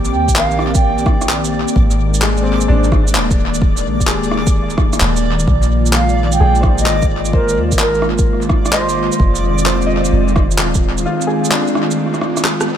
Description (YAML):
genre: future garage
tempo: 129 BPM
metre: 4/4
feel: swing 67% on 16ths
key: unclear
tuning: A4 = 441 Hz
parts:
  - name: bright upright piano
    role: accompaniment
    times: 0.0-12.8 s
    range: Ab3 to Eb5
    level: -24 LUFS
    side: left 2 dB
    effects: sidechain pumping, analog delay
  - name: airy breathy pad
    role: sustained chords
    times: 0.0-12.8 s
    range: Eb3 to G4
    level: -19 LUFS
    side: equal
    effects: chorus, sidechain pumping
  - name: soft 808-style bass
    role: bass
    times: 0.0-11.1 s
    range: Eb1 to Eb2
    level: -18 LUFS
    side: equal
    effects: sidechain pumping
  - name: electronic shaker, handclaps and rim click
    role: drums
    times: 0.0-12.7 s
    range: none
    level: -20 LUFS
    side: equal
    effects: tape echo
  - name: backwards swelling texture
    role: texture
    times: 0.0-12.8 s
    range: D5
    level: -27 LUFS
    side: right 1 dB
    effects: built-in reverb
  - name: bright reedy baroque flute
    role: melody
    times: 0.1-1.1, 5.9-9.2 s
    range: Bb4 to G5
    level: -20 LUFS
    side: right 3 dB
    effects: vintage 12-bit sampler grit, analog delay
  - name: electronic kick drum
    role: drums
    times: 0.3-10.8 s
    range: none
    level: -15 LUFS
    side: equal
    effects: none
  - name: riser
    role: sound effects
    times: 11.4-12.8 s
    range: none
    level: -30 LUFS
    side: right 3 dB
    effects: none
room: light reverb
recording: echo-heavy mix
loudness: -12 LUFS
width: side -9 dB against mid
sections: 0.0-12.8 A section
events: drum fill 12.5-12.8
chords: 0.0 Cm7; 1.8 Absus2; 5.5 Bb7sus4; 9.2 Fm7